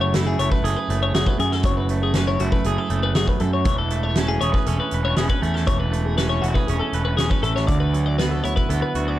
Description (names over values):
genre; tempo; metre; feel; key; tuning
math rock and midwest emo; 119 BPM; 4/4; straight; A major; A4 = 440 Hz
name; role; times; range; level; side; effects
clean electric guitar; accompaniment; 0.0-9.2 s; F#2 to B4; -25 LUFS; right 6 dB; none
twelve-string electric guitar; arpeggios; 0.0-9.2 s; F#4 to D5; -26 LUFS; left 5 dB; none
fuzz picked electric bass; bass; 0.0-9.2 s; E1 to F#2; -23 LUFS; equal; overdrive
loose indie drum kit; drums; 0.1-9.1 s; hi-hat, kick drum, snare drum; -24 LUFS; equal; none
room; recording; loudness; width
light reverb; dark, warm production; -18 LUFS; side -14 dB against mid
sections
0.0-9.2 A section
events
none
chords
0.0 F#m9; 3.7 Amaj9/E; 7.7 Bm11/D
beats
0.14 0.64 1.14 | 1.65 2.15 2.65 3.15 | 3.66 4.16 4.67 5.17 | 5.67 6.18 6.68 7.19 | 7.69 8.20 8.71